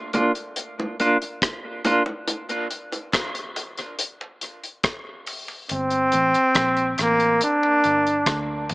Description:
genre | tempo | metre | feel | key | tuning
dub reggae | 70 BPM | 4/4 | straight | unclear | A4 = 440 Hz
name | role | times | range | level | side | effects
semi-hollow electric guitar | accompaniment | 0.1-2.0 s | Bb3 to F4 | -24 LUFS | right 1 dB | tremolo, high-pass filter, tape echo
damped 70s drum kit | drums | 0.1-8.7 s | hi-hat, kick drum, rim click | -26 LUFS | left 1 dB | tape echo
bongos | percussion | 0.1-8.7 s | none | -32 LUFS | right 1 dB | high-pass filter on perc, tape echo
brilliant trombone | melody | 5.7-8.7 s | Bb3 to D4 | -18 LUFS | equal | tape echo
vintage muted fingered electric bass | bass | 5.7-8.7 s | G1 to D2 | -31 LUFS | equal | none
room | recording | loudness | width
moderate spring reverb, RT60 2.5 s | small speaker sound | -20 LUFS | side -23 dB against mid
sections
0.0-8.7 A section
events
break 0.0-5.7; filter sweep 0.0-8.7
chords
0.0 Bb; 2.3 N.C.; 5.7 Gm

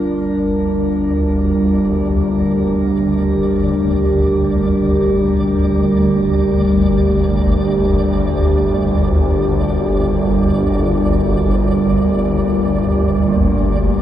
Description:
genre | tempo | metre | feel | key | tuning
dark ambient drone | free time | none | none | G minor | A4 = 440 Hz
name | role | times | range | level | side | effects
dark analog pad | sustained chords | 0.0-14.0 s | G3 to Bb4 | -16 LUFS | right 1 dB | chorus, phaser, shimmer reverb
swarming drone | drone | 0.2-14.0 s | G1 to D2 | -17 LUFS | equal | built-in reverb
flickering grainy texture | texture | 0.0-14.0 s | D5 | -28 LUFS | right 1 dB | built-in reverb, shimmer reverb
bronze singing bowl | arpeggios | 3.5-14.0 s | none | barely audible | none | none
room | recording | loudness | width
wet cathedral reverb, RT60 6.5 s | none | -13 LUFS | side -11 dB against mid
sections
0.0-14.0 A section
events
fade-in on synth texture 0.0-14.0; filter sweep on synth drone 0.0-14.0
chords
0.0 Gm

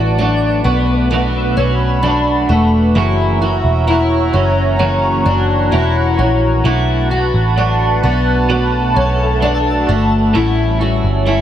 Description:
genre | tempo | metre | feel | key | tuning
dream pop | 65 BPM | 4/4 | straight | B minor | A4 = 440 Hz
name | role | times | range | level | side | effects
clean electric guitar | accompaniment | 0.0-11.4 s | F#2 to A4 | -20 LUFS | right 5 dB | tremolo, lush chorus
phased analog pad | sustained chords | 0.0-11.4 s | G3 to B5 | -19 LUFS | equal | phaser, chorus
fingerpicked twelve-string acoustic guitar | arpeggios | 0.0-11.4 s | A3 to F#4 | -17 LUFS | left 2 dB | wide subtle chorus, tape echo
vintage muted picked electric bass | bass | 0.0-11.4 s | E1 to B1 | -16 LUFS | equal | none
twinkling granular texture | texture | 0.0-2.2, 8.7-10.2 s | D4 to E5 | -27 LUFS | right 1 dB | built-in reverb, tape echo
room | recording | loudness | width
moderate concert hall reverb, RT60 2.2 s | none | -12 LUFS | side -10 dB against mid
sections
0.0-11.4 A section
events
none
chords
0.0 Bm7; 3.0 F#7; 6.6 Bm7; 10.3 A7

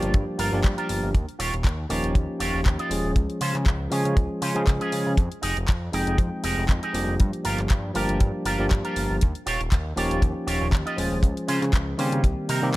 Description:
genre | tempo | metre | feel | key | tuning
nu-disco, nu disco | 119 BPM | 4/4 | swing 55% on 16ths | unclear | A4 = 440 Hz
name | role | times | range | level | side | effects
bell-like tine electric piano | accompaniment | 0.0-12.8 s | Eb3 to G5 | -28 LUFS | equal | vintage 12-bit sampler grit, sidechain pumping, analog delay
electric guitar with an envelope filter | riff | 0.0-12.7 s | C4 to Eb5 | -30 LUFS | right 2 dB | analog chorus
fat analog bass | bass | 0.0-12.7 s | Eb1 to Db3 | -28 LUFS | equal | none
house drum kit | drums | 0.0-12.8 s | handclaps, hi-hat | -33 LUFS | left 2 dB | overdrive
kick drum | drums | 0.1-12.3 s | none | -20 LUFS | equal | none
room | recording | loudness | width
light reverb, small room reverb | none | -22 LUFS | side -18 dB against mid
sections
0.0-12.8 A section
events
none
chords
0.0 Gm7; 1.1 Eb9; 3.2 Dbmaj7; 5.2 Fm9; 7.2 Gm7; 9.2 Eb9; 11.2 Dbmaj7; 12.2 Cm7

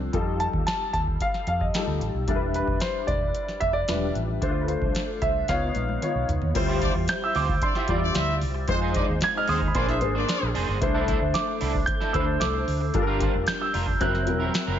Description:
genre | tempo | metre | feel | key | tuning
polished 1980s jazz-funk pop | 113 BPM | 4/4 | straight | unclear | A4 = 440 Hz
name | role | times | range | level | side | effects
warm grand piano | accompaniment | 0.0-14.8 s | F3 to D5 | -28 LUFS | left 3 dB | ensemble chorus
vintage muted fingered electric bass | bass | 0.0-14.8 s | E1 to F2 | -28 LUFS | equal | none
booming analog drum machine | drums | 0.1-14.7 s | crash cymbal, hi-hat, kick drum, snare drum, toms | -29 LUFS | equal | gated reverb
warm concert grand piano | melody | 0.4-14.8 s | B4 to Ab6 | -28 LUFS | right 2 dB | ping-pong delay
electric guitar at the edge of break-up | riff | 6.5-14.8 s | B#3 to D5 | -33 LUFS | right 6 dB | analog chorus
clear horn section | second line | 6.6-10.5 s | C4 to E5 | -32 LUFS | equal | none
room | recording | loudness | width
light reverb | nothing above 7.6 kHz | -22 LUFS | side -10 dB against mid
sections
0.0-6.6 A section; 6.6-14.8 B section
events
drum fill 5.5-6.6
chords
0.1 F9; 2.3 Em7; 4.4 Dm7; 5.5 Db9; 6.6 Dm11; 8.7 Fm7; 9.8 Bb9; 10.8 C69; 12.9 Gm7; 14.0 F#7#11

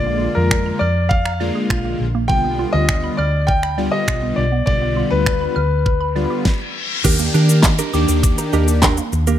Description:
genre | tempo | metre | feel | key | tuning
dance-pop | 101 BPM | 4/4 | straight | Eb major | A4 = 440 Hz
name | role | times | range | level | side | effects
clear grand piano | melody | 0.0-6.4 s | Bb4 to G5 | -21 LUFS | left 2 dB | ping-pong delay
big bright polysynth | accompaniment | 0.0-8.8 s | D3 to G4 | -22 LUFS | left 1 dB | chorus, sidechain pumping
hollow square pluck | arpeggios | 0.0-9.4 s | D3 to F6 | -28 LUFS | right 8 dB | chorus, sidechain pumping, ping-pong delay
hollow-body short-scale fingered electric bass | bass | 0.0-9.4 s | Bb1 to Eb3 | -19 LUFS | equal | sidechain pumping
pop drum kit | drums | 0.5-9.4 s | crash cymbal, finger snaps, handclaps, hi-hat, kick drum, shaker, snare drum | -18 LUFS | equal | none
reverse cymbal and downlifter | sound effects | 6.3-9.4 s | none | -27 LUFS | left 3 dB | none
direct-recorded clean electric guitar | riff | 7.0-9.4 s | D4 to Bb4 | -24 LUFS | right 9 dB | analog chorus
room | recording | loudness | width
light reverb, digital ambience | none | -15 LUFS | side -11 dB against mid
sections
0.0-7.0 A section; 7.0-9.4 B section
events
reverse cymbal 6.3-7.0; stop 6.5-7.0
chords
0.0 Bb7; 2.3 G7/B; 7.0 Ebmaj7

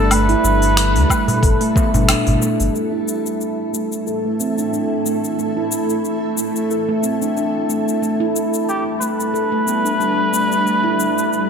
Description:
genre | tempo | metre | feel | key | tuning
organic downtempo | 91 BPM | 4/4 | swing 55% on 16ths | unclear | A4 = 440 Hz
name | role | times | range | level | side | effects
trumpet with cup mute | melody | 0.0-2.1, 8.7-11.5 s | G4 to B4 | -20 LUFS | equal | digital delay
granular cloud pad | sustained chords | 0.0-11.5 s | G3 to A4 | -23 LUFS | equal | built-in reverb, vintage 12-bit sampler grit, sidechain pumping
handpan | arpeggios | 0.0-11.5 s | A3 to A4 | -20 LUFS | right 1 dB | low-pass filter, digital delay
warm sub bass | bass | 0.0-2.7 s | G1 to D2 | -18 LUFS | equal | none
deep house drum kit | drums | 0.1-11.5 s | cabasa, finger snaps, hi-hat, woodblock | -22 LUFS | left 3 dB | none
darbuka | percussion | 0.4-2.6 s | none | -23 LUFS | right 1 dB | none
electronic kick drum | drums | 1.1-1.9 s | none | -17 LUFS | equal | none
room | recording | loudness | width
moderate plate reverb, RT60 2.0 s, small room ambience | bright 1980s-style digital production | -16 LUFS | side -6 dB against mid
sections
0.0-2.8 A section; 2.8-11.5 B section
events
filter sweep on handpan 2.8-11.5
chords
0.0 G6; 2.8 A5; 8.0 G6

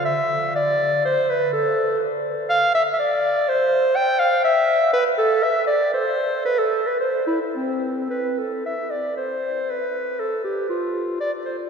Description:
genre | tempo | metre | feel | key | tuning
classical, baroque-style fantasia for unaccompanied clarinet | 105-124 BPM | 3/4 | rubato | C major | A4 = 440 Hz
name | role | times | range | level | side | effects
warm clarinet | solo | 0.0-11.6 s | C4 to G5 | -19 LUFS | equal | none
room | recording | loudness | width
wet cathedral reverb, RT60 6.1 s | heard from further back in the room, nothing above 10.7 kHz | -19 LUFS | side -6 dB against mid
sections
0.0-8.7 A section; 8.7-11.7 A section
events
none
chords
none

